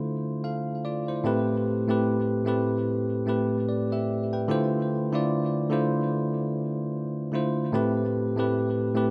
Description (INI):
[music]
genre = R&B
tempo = 74 BPM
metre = 4/4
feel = swing 58% on 16ths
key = A minor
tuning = A4 = 438 Hz
[part]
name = bell-like tine electric piano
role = solo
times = 0.0-9.1 s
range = A2 to G5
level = -27 LUFS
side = equal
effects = delay
[sound]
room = moderate plate reverb, RT60 3.5 s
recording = rough home demo mix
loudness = -27 LUFS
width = mono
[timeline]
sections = 0.0-9.1 A section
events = none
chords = 0.0 Dm7; 1.2 Am9; 4.5 Dm7; 7.7 Am9